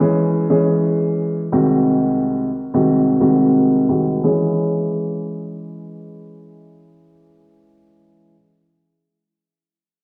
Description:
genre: hip hop.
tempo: 88 BPM.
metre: 4/4.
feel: swing 61% on 16ths.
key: C# harmonic minor.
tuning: A4 = 443 Hz.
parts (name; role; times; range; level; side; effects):
dark baby grand piano; accompaniment; 0.0-8.3 s; B#1 to G#4; -18 LUFS; equal; cassette tape, high-pass filter, low-pass filter.
room: wet lush hall reverb, RT60 2.3 s.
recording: dreamy mix soaked in reverb.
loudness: -17 LUFS.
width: mono.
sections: 0.0-4.2 A section; 4.2-7.0 B section.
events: filter sweep on grand piano 0.0-4.2.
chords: 0.0 C#m; 1.5 G#7/B#; 4.2 C#m.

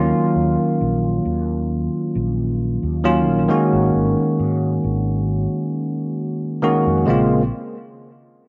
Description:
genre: vaporwave.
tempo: 67 BPM.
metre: 4/4.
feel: straight.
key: unclear.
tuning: A4 = 440 Hz.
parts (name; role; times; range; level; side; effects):
bell-like tine electric piano; accompaniment; 0.0-7.4 s; Db3 to Gb4; -20 LUFS; equal; analog chorus, analog delay.
fretless electric bass; bass; 0.0-7.5 s; Ab1 to Ab2; -26 LUFS; equal; ensemble chorus.
room: moderate recital hall reverb, RT60 1.6 s.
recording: cassette tape.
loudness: -19 LUFS.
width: mono.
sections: 0.0-7.1 A section; 7.1-8.5 B section.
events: none.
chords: 0.0 Ebm7; 3.5 Ab9sus4; 7.1 Bbm9.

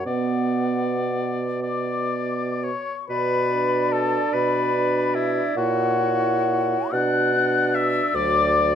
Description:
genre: classical, slow romantic movement for wind quintet.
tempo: 36-53 BPM (dotted quarters).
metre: 6/8.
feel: rubato.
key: B minor.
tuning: A4 = 443 Hz.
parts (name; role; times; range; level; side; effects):
mellow hollow silver concert flute; melody; 0.0-8.6 s; E5 to F#6; -25 LUFS; left 8 dB; none.
clear oboe; second line; 0.0-8.8 s; E4 to F#5; -27 LUFS; left 3 dB; none.
mellow bassoon; bass; 0.0-8.8 s; D2 to B2; -25 LUFS; right 2 dB; none.
mellow French horn; accompaniment; 0.1-8.8 s; F#3 to E4; -29 LUFS; right 4 dB; none.
mellow clarinet; accompaniment; 0.1-8.8 s; B3 to D5; -28 LUFS; right 7 dB; none.
room: moderate large studio reverb, RT60 1.2 s.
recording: dark, warm production.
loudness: -20 LUFS.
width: side -8 dB against mid.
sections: 0.0-3.1 A section; 3.1-8.8 B section.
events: none.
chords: 0.1 Bm; 5.6 F#7/A#; 6.9 Bm; 8.2 D.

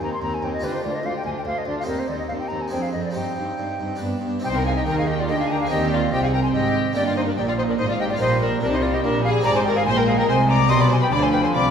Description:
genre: classical, baroque-style concerto movement with solo episodes.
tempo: 144 BPM.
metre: 3/4.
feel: straight.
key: C minor.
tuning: A4 = 440 Hz.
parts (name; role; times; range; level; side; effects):
concert flute; melody; 0.0-11.7 s; Bb4 to C6; -25 LUFS; left 1 dB; none.
dark studio violin section; melody; 0.0-11.7 s; G4 to Eb6; -30 LUFS; left 5 dB; none.
rich chamber violin section; second line; 0.0-11.7 s; D4 to Eb5; -27 LUFS; left 2 dB; none.
dark chamber viola section; accompaniment; 0.0-11.7 s; F3 to Eb4; -28 LUFS; right 2 dB; none.
harpsichord; accompaniment; 0.0-11.7 s; D2 to D5; -30 LUFS; equal; none.
warm chamber cello section; bass; 0.0-11.7 s; D2 to Eb3; -26 LUFS; right 1 dB; none.
rich chamber double bass section; bass; 4.5-11.7 s; G1 to Eb2; -25 LUFS; right 3 dB; none.
room: wet scoring stage reverb, RT60 1.8 s.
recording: heard from further back in the room.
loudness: -19 LUFS.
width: side -7 dB against mid.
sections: 0.0-4.4 A section; 4.4-11.7 B section.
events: none.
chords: 0.0 Cm/Eb; 0.6 G5/D; 1.9 Cm/Eb; 2.7 Dm7b5/F; 3.2 Cm/G; 4.0 G; 4.4 Cm; 7.0 Gm; 8.2 Gm/Bb; 9.4 Ab; 10.7 G/B.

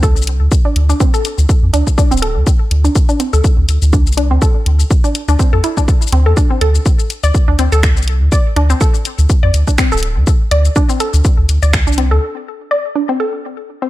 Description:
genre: minimal techno.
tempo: 123 BPM.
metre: 4/4.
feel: swing 55% on 16ths.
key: D minor.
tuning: A4 = 438 Hz.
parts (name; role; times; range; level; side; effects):
resonant blip pluck; riff; 0.0-13.9 s; C4 to D5; -19 LUFS; equal; chorus, sidechain pumping, ping-pong delay.
round analog bass; bass; 0.0-12.2 s; D1 to F2; -12 LUFS; equal; sidechain pumping.
electronic kick drum; drums; 0.0-11.8 s; none; -12 LUFS; equal; none.
garage drum kit; drums; 0.0-12.1 s; finger snaps, hi-hat, shaker; -21 LUFS; left 3 dB; none.
room: little or no reverb.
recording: none.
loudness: -11 LUFS.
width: side -16 dB against mid.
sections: 0.0-13.9 A section.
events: break 12.2-13.9.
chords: none.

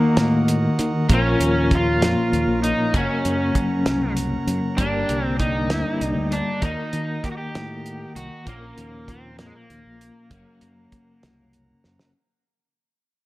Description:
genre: psychedelic rock.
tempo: 65 BPM (dotted quarters).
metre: 6/8.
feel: straight.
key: unclear.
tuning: A4 = 438 Hz.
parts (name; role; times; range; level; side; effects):
overdriven slide guitar; melody; 0.0-11.5 s; Ab3 to G4; -25 LUFS; equal; analog delay.
combo organ; sustained chords; 0.0-12.1 s; Gb4 to Bb5; -34 LUFS; right 4 dB; spring reverb.
twelve-string electric guitar; riff; 0.0-12.1 s; F#2 to G4; -24 LUFS; left 2 dB; rotary speaker.
fingered electric bass; bass; 0.2-12.0 s; F#1 to Eb3; -26 LUFS; equal; none.
cloth-damped thuddy drum kit; drums; 0.2-12.1 s; hi-hat, kick drum, snare drum; -24 LUFS; right 1 dB; none.
room: light reverb, studio ambience.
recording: none.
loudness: -19 LUFS.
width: side -18 dB against mid.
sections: 0.0-12.1 A section.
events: fade-out 0.0-12.1; drum fill 11.8-12.1.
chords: 0.0 Ebm; 1.1 Bbm; 2.9 F#; 4.8 Gm; 6.6 Ebm; 8.5 Bbm; 10.3 F#.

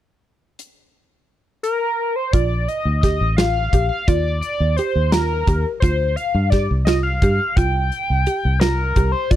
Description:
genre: progressive instrumental, band music in an uneven meter.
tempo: 172 BPM (eighths).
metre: 5/8.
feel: straight.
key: unclear.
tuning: A4 = 440 Hz.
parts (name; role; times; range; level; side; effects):
huge arena drum kit; drums; 0.6-9.4 s; hi-hat, kick drum, snare drum; -19 LUFS; equal; none.
overdriven synth lead; melody; 1.6-9.4 s; Bb4 to G5; -22 LUFS; left 2 dB; phaser.
mallet-like synth pluck; arpeggios; 2.3-9.4 s; F4 to G4; -24 LUFS; right 4 dB; chorus.
fingered electric bass; bass; 2.3-9.4 s; A1 to G2; -20 LUFS; equal; none.
room: studio ambience.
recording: dry, close 1970s-style studio recording.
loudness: -16 LUFS.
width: side -12 dB against mid.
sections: 0.6-2.3 A section; 2.3-9.4 B section.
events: none.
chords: 0.6 N.C.; 2.3 Bbmaj7; 4.1 Eb; 5.8 Dm7; 7.6 C5.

